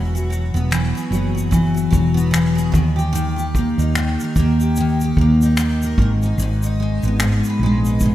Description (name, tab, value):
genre	acoustic pop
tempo	74 BPM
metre	4/4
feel	swing 60% on 16ths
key	unclear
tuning	A4 = 441 Hz
part	picked steel-string acoustic guitar	accompaniment	0.0-8.1 s	G#2 to B4	-18 LUFS	equal	double-tracked left and right
part	woody fretless electric bass	bass	0.0-8.1 s	E1 to D#2	-19 LUFS	equal	none
part	unplugged drum kit	drums	0.2-8.1 s	finger snaps, kick drum, shaker	-23 LUFS	equal	none
room	moderate lush hall reverb, RT60 2.5 s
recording	rough home demo mix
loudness	-15 LUFS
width	side -13 dB against mid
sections	0.0-8.1 A section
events	none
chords	0.0 Eadd9; 2.7 D#; 6.0 G#m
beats	0.70 1.51 2.33 | 3.14 3.95 4.76 5.57 | 6.38 7.19 8.01